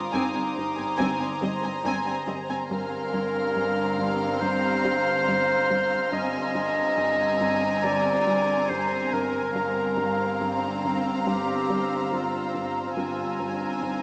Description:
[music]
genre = cinematic, suspense film score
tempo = 70 BPM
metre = 4/4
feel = straight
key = unclear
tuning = A4 = 440 Hz
[part]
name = warm symphonic violin section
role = melody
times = 0.0-14.0 s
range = Bb5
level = -36 LUFS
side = equal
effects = none
[part]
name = clear clarinet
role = second line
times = 0.0-14.0 s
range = Eb4 to Eb5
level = -29 LUFS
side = equal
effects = none
[part]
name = granular cloud pad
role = sustained chords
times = 0.0-14.0 s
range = C5 to Bb5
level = -37 LUFS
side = equal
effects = built-in reverb
[part]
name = organ-like drone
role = drone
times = 0.0-14.0 s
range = G1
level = -44 LUFS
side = equal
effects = ensemble chorus, built-in reverb
[part]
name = warm symphonic violin section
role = texture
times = 0.0-14.0 s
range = Bb5 to F6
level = -40 LUFS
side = equal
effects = none
[part]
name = rich chamber violin section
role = second line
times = 0.1-14.0 s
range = Eb5 to Ab5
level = -37 LUFS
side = equal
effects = none
[part]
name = dark symphonic viola section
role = accompaniment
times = 0.1-14.0 s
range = C4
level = -36 LUFS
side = equal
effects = none
[part]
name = plucky analog bass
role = riff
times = 0.1-14.0 s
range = G2 to G3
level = -37 LUFS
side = equal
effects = none
[part]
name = dark symphonic double bass section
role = bass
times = 0.1-14.0 s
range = G1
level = -42 LUFS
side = equal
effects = none
[part]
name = rich symphonic cello section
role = bass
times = 0.1-14.0 s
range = G2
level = -36 LUFS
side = equal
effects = none
[sound]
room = wet scoring stage reverb, RT60 1.7 s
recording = small speaker sound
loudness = -26 LUFS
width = mono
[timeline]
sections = 0.0-14.0 A section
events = none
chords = 0.0 Abadd9/G; 2.7 Bbsus2/G; 6.1 Abadd9/G; 9.6 Bbsus2/G; 13.0 Abadd9/G

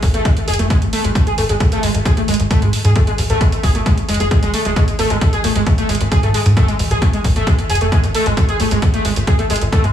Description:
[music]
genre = driving peak-time techno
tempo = 133 BPM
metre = 4/4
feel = straight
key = unclear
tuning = A4 = 439 Hz
[part]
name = tight sequencer bass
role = bass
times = 0.0-9.9 s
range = D#1 to G#2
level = -17 LUFS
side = equal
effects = sidechain pumping
[part]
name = electronic hi-hat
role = drums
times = 0.0-9.9 s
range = none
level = -26 LUFS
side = right 4 dB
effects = overdrive, sidechain pumping on hats
[part]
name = electronic kick drum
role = drums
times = 0.0-9.8 s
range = none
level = -15 LUFS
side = equal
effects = overdrive
[part]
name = overdriven synth lead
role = riff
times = 0.1-9.9 s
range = G#3 to G#4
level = -19 LUFS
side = equal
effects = distortion, tube saturation, wide subtle chorus, sidechain pumping, dub echo
[sound]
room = digital ambience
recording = small room reverb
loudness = -13 LUFS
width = side -10 dB against mid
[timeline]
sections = 0.0-9.9 A section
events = none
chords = 0.0 G#5

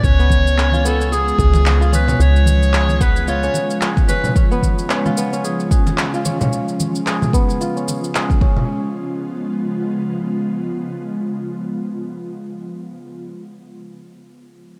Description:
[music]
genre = organic downtempo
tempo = 111 BPM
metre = 4/4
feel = swing 57% on 16ths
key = unclear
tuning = A4 = 440 Hz
[part]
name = bright clarinet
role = melody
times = 0.0-4.3 s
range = G#4 to C#5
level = -24 LUFS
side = equal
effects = tape echo
[part]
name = ethereal airy pad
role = sustained chords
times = 0.9-12.7 s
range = C#3 to E#4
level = -26 LUFS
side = equal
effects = ensemble chorus, built-in reverb, sidechain pumping
[part]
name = kora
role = arpeggios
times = 0.0-10.2 s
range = B3 to G#4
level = -26 LUFS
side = equal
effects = low-pass filter, tape echo
[part]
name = woody FM bass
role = bass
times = 0.0-3.5 s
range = C#2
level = -17 LUFS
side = equal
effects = none
[part]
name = electronic kick drum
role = drums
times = 0.0-8.5 s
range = none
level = -18 LUFS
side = equal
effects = none
[part]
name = electronic shaker and handclaps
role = drums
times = 0.0-8.4 s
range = none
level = -27 LUFS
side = equal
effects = none
[part]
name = congas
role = percussion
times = 0.3-8.7 s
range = none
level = -26 LUFS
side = equal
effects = none
[sound]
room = light reverb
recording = dark, warm production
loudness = -18 LUFS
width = mono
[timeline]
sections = 0.0-8.7 A section; 8.7-13.0 B section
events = filter sweep on kora 0.0-8.7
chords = 0.0 C#7

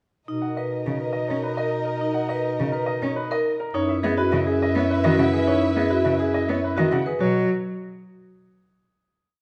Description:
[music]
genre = classical, minimalist pattern music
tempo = 104 BPM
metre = 3/4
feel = straight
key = B major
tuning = A4 = 439 Hz
[part]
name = clear soprano saxophone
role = second line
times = 0.3-7.0 s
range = D#4 to E4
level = -32 LUFS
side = equal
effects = none
[part]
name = dark chamber string section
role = sustained chords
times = 0.3-7.0 s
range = A#4 to E5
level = -34 LUFS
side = equal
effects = none
[part]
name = vibraphone with medium hard mallets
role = arpeggios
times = 0.3-7.5 s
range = D#4 to B4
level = -28 LUFS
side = equal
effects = none
[part]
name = mellow bass clarinet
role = bass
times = 0.3-7.5 s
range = F#2 to B2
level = -29 LUFS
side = equal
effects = none
[part]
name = clear baby grand piano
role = melody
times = 0.4-7.5 s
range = G#4 to F#5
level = -32 LUFS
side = equal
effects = none
[part]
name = clear cello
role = accompaniment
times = 0.9-7.5 s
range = C#3 to C#4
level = -29 LUFS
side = equal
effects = none
[sound]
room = moderate recital hall reverb, RT60 1.4 s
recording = dark, warm production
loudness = -23 LUFS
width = mono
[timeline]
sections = 0.3-7.2 A section; 7.2-8.9 final chord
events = none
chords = 0.3 Bmaj7; 3.7 F#9sus4; 7.2 B5

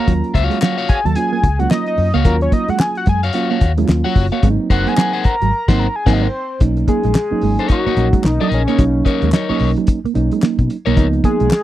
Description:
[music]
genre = funk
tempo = 110 BPM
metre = 4/4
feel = swing 60% on 16ths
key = unclear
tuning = A4 = 441 Hz
[part]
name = fat analog lead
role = melody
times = 0.0-11.6 s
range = C#4 to C6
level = -20 LUFS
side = left 1 dB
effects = chorus
[part]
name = electric guitar at the edge of break-up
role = accompaniment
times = 0.0-11.1 s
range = D#4 to Gb5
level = -21 LUFS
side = left 6 dB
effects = none
[part]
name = mellow electric guitar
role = riff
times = 0.0-11.5 s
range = Gb3 to Bb3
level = -22 LUFS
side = right 11 dB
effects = none
[part]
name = mellow reed electric piano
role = stabs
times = 0.1-11.5 s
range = F3 to F4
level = -21 LUFS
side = right 4 dB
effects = none
[part]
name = vintage muted fingered electric bass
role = bass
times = 0.1-11.5 s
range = Gb1 to B2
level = -18 LUFS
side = left 1 dB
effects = none
[part]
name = cloth-damped thuddy drum kit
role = drums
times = 0.1-11.6 s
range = crash cymbal, hi-hat, kick drum, snare drum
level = -15 LUFS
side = left 1 dB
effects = none
[part]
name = group handclap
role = percussion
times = 0.6-11.6 s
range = none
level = -30 LUFS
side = left 3 dB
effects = none
[sound]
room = little or no reverb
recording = dry, close 1970s-style studio recording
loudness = -13 LUFS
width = side -14 dB against mid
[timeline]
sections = 0.0-6.6 A section; 6.6-11.6 B section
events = analog synth lead solo 0.0-6.6; band accent 5.5-6.6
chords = 0.0 Ebm9; 4.4 Ab9; 6.6 Bmaj9; 11.0 Db13

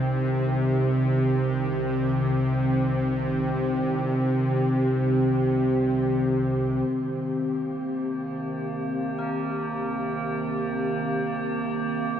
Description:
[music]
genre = dark ambient drone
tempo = free time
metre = none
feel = none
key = unclear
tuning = A4 = 440 Hz
[part]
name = sweeping resonant pad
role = sustained chords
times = 0.0-12.2 s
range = Eb3 to G4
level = -26 LUFS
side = equal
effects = lush chorus, shimmer reverb
[part]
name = bowed-like drone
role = drone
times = 0.0-12.2 s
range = C2 to C3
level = -27 LUFS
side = equal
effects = built-in reverb
[part]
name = metallic inharmonic drone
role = texture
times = 7.6-12.2 s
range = Bb3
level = -30 LUFS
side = right 5 dB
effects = chorus, built-in reverb, shimmer reverb
[part]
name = tubular bells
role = arpeggios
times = 9.2-12.2 s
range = Bb4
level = -42 LUFS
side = equal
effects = tape echo, shimmer reverb
[sound]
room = wet huge ambient reverb, RT60 7.6 s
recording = dreamy mix soaked in reverb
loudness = -23 LUFS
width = side -9 dB against mid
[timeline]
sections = 0.0-6.9 A section; 6.9-12.2 B section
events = none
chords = 0.0 Cm

